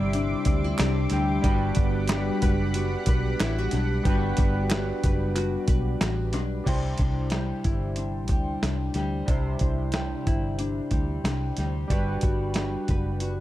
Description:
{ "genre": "indie pop, bedroom pop", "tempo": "92 BPM", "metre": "4/4", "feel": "swing 55% on 16ths", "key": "C lydian", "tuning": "A4 = 440 Hz", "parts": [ { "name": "chorused retro synth keys", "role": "accompaniment", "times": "0.0-13.4 s", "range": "G3 to D5", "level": "-32 LUFS", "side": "right 3 dB", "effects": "none" }, { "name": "nylon-string guitar", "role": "accompaniment", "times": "0.0-13.4 s", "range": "C3 to B4", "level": "-31 LUFS", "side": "left 4 dB", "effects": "lush chorus, warbly pitch drift" }, { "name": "lush unison pad", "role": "sustained chords", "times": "0.0-6.6 s", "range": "G3 to D6", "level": "-32 LUFS", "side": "equal", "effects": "chorus" }, { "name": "vintage muted fingered electric bass", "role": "bass", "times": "0.0-13.4 s", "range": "F#1 to D2", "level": "-28 LUFS", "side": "equal", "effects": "none" }, { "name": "dusty soul sampler-style drum kit", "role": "drums", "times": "0.1-13.4 s", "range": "crash cymbal, hi-hat, kick drum, snare drum", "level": "-26 LUFS", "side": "equal", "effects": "none" }, { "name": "group handclap", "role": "percussion", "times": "0.8-6.2 s", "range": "none", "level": "-36 LUFS", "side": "right 3 dB", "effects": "none" } ], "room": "little or no reverb", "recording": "dark, warm production", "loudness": "-23 LUFS", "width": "side -14 dB against mid", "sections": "0.0-6.7 A section; 6.7-13.4 B section", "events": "none", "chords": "0.0 Cadd9; 1.4 Gmaj7; 6.7 Cadd9; 11.9 Gmaj7" }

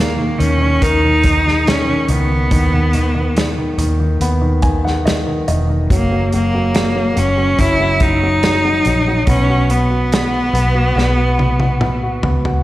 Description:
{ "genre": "pop ballad", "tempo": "71 BPM", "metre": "4/4", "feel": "straight", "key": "B major", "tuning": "A4 = 440 Hz", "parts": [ { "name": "bright cello", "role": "melody", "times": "0.0-12.2 s", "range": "A#3 to E4", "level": "-17 LUFS", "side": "equal", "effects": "slapback echo, ping-pong delay" }, { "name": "warm grand piano", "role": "accompaniment", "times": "0.0-12.6 s", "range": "D#3 to G#5", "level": "-20 LUFS", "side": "equal", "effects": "slapback echo" }, { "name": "vintage muted fingered electric bass", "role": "bass", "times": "0.0-12.6 s", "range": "E1 to D#2", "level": "-17 LUFS", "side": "equal", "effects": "none" }, { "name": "loose indie drum kit", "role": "drums", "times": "0.4-12.6 s", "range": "hi-hat, kick drum, snare drum, toms", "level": "-18 LUFS", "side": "equal", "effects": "none" } ], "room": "small room ambience", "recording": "live gig heard through the venue's PA, recital hall reverb", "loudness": "-13 LUFS", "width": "side -16 dB against mid", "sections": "0.0-12.6 A section", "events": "grand piano fill 4.2-5.9; drum fill 11.0-12.6", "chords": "0.0 D#5; 2.5 B/D#; 5.9 F#; 9.3 B5" }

